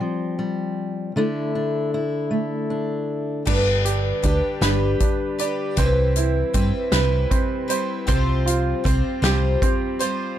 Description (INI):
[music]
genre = indie folk with a building arrangement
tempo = 52 BPM (dotted quarters)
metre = 6/8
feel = straight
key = G major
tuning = A4 = 440 Hz
[part]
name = fingerpicked steel-string acoustic guitar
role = accompaniment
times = 0.0-5.8 s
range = D3 to E4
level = -25 LUFS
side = left 2 dB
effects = none
[part]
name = picked twelve-string acoustic guitar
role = accompaniment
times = 3.5-10.4 s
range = C3 to C5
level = -25 LUFS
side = left 3 dB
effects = none
[part]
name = clear upright piano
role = arpeggios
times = 3.5-10.4 s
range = C4 to D5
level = -26 LUFS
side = right 8 dB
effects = none
[part]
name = hollow-body short-scale fingered electric bass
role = bass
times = 3.5-9.6 s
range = G1 to G2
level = -21 LUFS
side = equal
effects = none
[part]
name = natural country drum kit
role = drums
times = 3.5-10.2 s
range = crash cymbal, hi-hat, kick drum, snare drum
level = -23 LUFS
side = equal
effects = none
[sound]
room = little or no reverb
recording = dark, warm production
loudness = -19 LUFS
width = side -11 dB against mid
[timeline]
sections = 0.0-3.5 A section; 3.5-10.4 B section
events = build-up 3.5-10.4; drum fill 3.5-10.4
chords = 0.0 Fsus2; 1.2 Dsus2; 3.5 G; 5.8 Cmaj7; 8.1 Fsus2/C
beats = 0.00 | 1.15 2.31 | 3.47 4.62 | 5.78 6.93 | 8.09 9.24